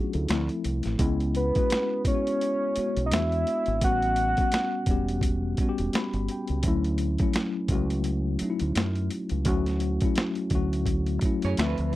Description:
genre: R&B, neo-soul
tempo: 85 BPM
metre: 4/4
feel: swing 58% on 16ths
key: unclear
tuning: A4 = 441 Hz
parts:
  - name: mellow tine electric piano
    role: accompaniment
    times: 0.0-12.0 s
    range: F3 to B5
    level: -28 LUFS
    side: left 2 dB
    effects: medium stereo tremolo
  - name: deep dub fingered electric bass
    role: bass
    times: 0.1-12.0 s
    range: E1 to F#2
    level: -28 LUFS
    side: right 1 dB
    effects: none
  - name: boom bap sampler-style drum kit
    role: drums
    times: 0.1-12.0 s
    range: hi-hat, kick drum, snare drum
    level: -28 LUFS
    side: right 1 dB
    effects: none
  - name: soft octave-layered synth lead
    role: melody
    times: 1.4-5.2 s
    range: B4 to F#5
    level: -27 LUFS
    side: right 1 dB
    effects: chorus
  - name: electric guitar through a small old amp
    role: second line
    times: 11.4-11.9 s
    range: F4 to C#5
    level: -33 LUFS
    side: right 6 dB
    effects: tremolo
room: little or no reverb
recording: dry, close 1970s-style studio recording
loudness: -24 LUFS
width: side -16 dB against mid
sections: 0.0-12.0 A section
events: tine electric piano fill 5.6-6.6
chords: 0.3 Dm7; 1.0 C#m7; 3.1 E9; 3.8 A13; 6.6 Dmaj9

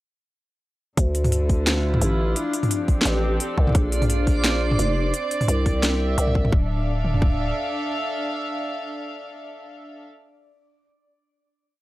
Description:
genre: half-time drum and bass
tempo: 173 BPM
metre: 4/4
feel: swing 56% on 16ths, half-time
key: D minor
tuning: A4 = 439 Hz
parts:
  - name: warm studio string section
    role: sustained chords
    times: 1.0-10.1 s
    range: D3 to F5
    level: -29 LUFS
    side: right 1 dB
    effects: sidechain pumping
  - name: growling 808-style bass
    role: bass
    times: 1.0-7.5 s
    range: D1 to D2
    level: -22 LUFS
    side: equal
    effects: none
  - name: drum and bass drum kit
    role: drums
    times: 1.0-7.3 s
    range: kick drum, toms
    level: -20 LUFS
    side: equal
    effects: none
  - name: drum and bass drum kit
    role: drums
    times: 1.0-6.5 s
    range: hi-hat, snare drum, toms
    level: -24 LUFS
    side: equal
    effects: none
  - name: backwards swelling texture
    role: texture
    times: 1.6-6.5 s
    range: D4 to D5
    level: -31 LUFS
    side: equal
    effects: built-in reverb
room: little or no reverb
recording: dry, gritty hardware recording, transformer saturation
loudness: -20 LUFS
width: side -17 dB against mid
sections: 1.0-6.5 drop; 6.5-9.3 final chord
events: drop 1.0-6.5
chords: 1.0 Dm; 2.4 F; 3.8 Bb; 5.1 C; 6.5 Dm

